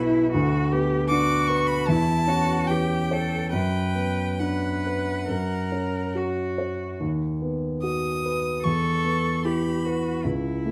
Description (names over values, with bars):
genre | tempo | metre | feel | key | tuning
classical, slow romantic movement for piano trio | 66-80 BPM | 4/4 | rubato | B minor | A4 = 440 Hz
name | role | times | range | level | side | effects
clear cello | second line | 0.0-10.7 s | E4 to B4 | -32 LUFS | equal | none
dark baby grand piano | accompaniment | 0.0-10.7 s | C#2 to C#5 | -26 LUFS | equal | none
clear violin | melody | 1.1-10.3 s | F#5 to D#6 | -31 LUFS | equal | none
room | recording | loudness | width
light reverb | close, detailed microphones | -25 LUFS | mono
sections
0.0-10.7 A section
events
none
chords
0.3 Bm/D; 1.9 C#dim/E; 3.5 Bm/F#; 5.3 F#; 7.0 B/D#; 8.6 E5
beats
| 0.34 1.10 1.87 2.68 | 3.52 4.40 5.29 6.15 | 7.00 7.83 8.65 9.45 | 10.26